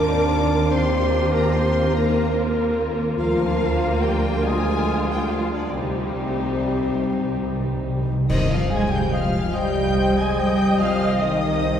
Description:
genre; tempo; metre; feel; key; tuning
cinematic, emotional film score for orchestra; 48 BPM (dotted quarters); 6/8; rubato; C minor; A4 = 440 Hz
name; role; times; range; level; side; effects
rich symphonic violin section; melody; 0.0-11.8 s; C5 to Ab6; -32 LUFS; left 2 dB; none
dark clarinet; second line; 0.0-11.8 s; C4 to D5; -28 LUFS; left 1 dB; none
rich studio violin section; second line; 0.0-11.8 s; G3 to Ab5; -30 LUFS; left 1 dB; none
dark symphonic viola section; accompaniment; 0.0-11.8 s; F4 to Eb5; -28 LUFS; right 1 dB; none
mellow French horn section; sustained chords; 0.0-11.8 s; C3 to D4; -25 LUFS; left 1 dB; none
rich symphonic cello section; bass; 0.0-11.8 s; C2 to Ab3; -26 LUFS; right 1 dB; none
rich symphonic double bass section; bass; 0.0-11.8 s; C2 to Eb2; -27 LUFS; right 2 dB; none
timpani; percussion; 5.7-9.5 s; C3; -29 LUFS; equal; none
mellow cor anglais; second line; 8.3-11.8 s; Eb5; -33 LUFS; left 1 dB; none
silver concert flute; second line; 8.3-11.8 s; Eb5 to Ab5; -28 LUFS; left 1 dB; none
clash cymbals and concert bass drum; percussion; 8.3-9.9 s; none; -30 LUFS; equal; none
room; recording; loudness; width
wet cathedral reverb, RT60 6.0 s; heard from further back in the room; -19 LUFS; side -9 dB against mid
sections
0.0-8.3 A section; 8.3-11.8 B section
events
timpani fill 5.7-8.3; band accent 8.3-9.1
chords
0.0 Ebadd9; 3.2 Bb/D; 5.7 Cm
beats
| 0.72 1.95 | 3.19 4.45 | 5.74 7.02 | 8.30 9.56 | 10.80

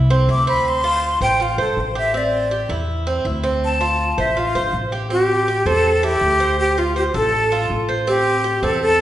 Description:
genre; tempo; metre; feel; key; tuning
latin, Cuban son and guajira; 162 BPM; 4/4; straight; A minor; A4 = 439 Hz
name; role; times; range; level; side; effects
Cuban tres; arpeggios; 0.0-9.0 s; C4 to C5; -22 LUFS; right 2 dB; none
upright bass; bass; 0.0-9.0 s; G1 to E2; -23 LUFS; equal; none
breathy jazz flute; melody; 0.3-9.0 s; F4 to D6; -18 LUFS; equal; none
room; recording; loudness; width
wet recital hall reverb, RT60 1.5 s; recorded in a church or concert hall, nothing above 10.9 kHz; -16 LUFS; side -12 dB against mid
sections
0.0-5.1 A section; 5.1-9.0 B section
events
flute solo 0.0-5.1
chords
0.0 Am (rootless); 0.7 Dm7; 2.1 Am7; 3.6 Dm7; 5.1 Am7; 6.6 Dm7; 8.1 Am7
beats
0.28 | 0.65 1.02 1.40 1.77 | 2.14 2.51 2.88 3.25 | 3.62 3.99 4.36 4.73 | 5.11 5.47 5.85 6.22 | 6.59 6.96 7.33 7.70 | 8.07 8.44 8.81

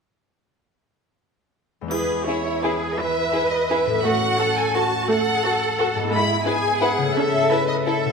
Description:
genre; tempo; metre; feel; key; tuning
classical, orchestral ballroom waltz; 171 BPM; 3/4; uneven beats, rubato; E major; A4 = 440 Hz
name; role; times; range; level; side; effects
concert harp; arpeggios; 1.8-8.1 s; E2 to A4; -26 LUFS; left 3 dB; none
rich studio violin section; melody; 1.9-8.1 s; B4 to B5; -24 LUFS; left 2 dB; none
warm studio viola section; accompaniment; 1.9-7.4 s; E3 to C#4; -26 LUFS; right 4 dB; none
rich studio cello section; bass; 1.9-8.1 s; E4 to B4; -24 LUFS; right 3 dB; none
triangle; percussion; 1.9-2.6 s; none; -38 LUFS; equal; none
warm studio violin section; second line; 2.3-7.9 s; E4 to B4; -26 LUFS; left 2 dB; none
room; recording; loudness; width
wet scoring stage reverb, RT60 1.6 s; minimal, uncompressed stereo recording; -19 LUFS; side -5 dB against mid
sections
1.9-8.1 A section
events
none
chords
1.9 E; 4.0 F#m/A; 6.1 E/G#; 7.2 A/C#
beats
| 1.91 2.26 2.62 | 2.97 3.32 3.69 | 4.04 4.38 4.75 | 5.09 5.44 5.80 | 6.13 6.47 6.83 | 7.16 7.50 7.87

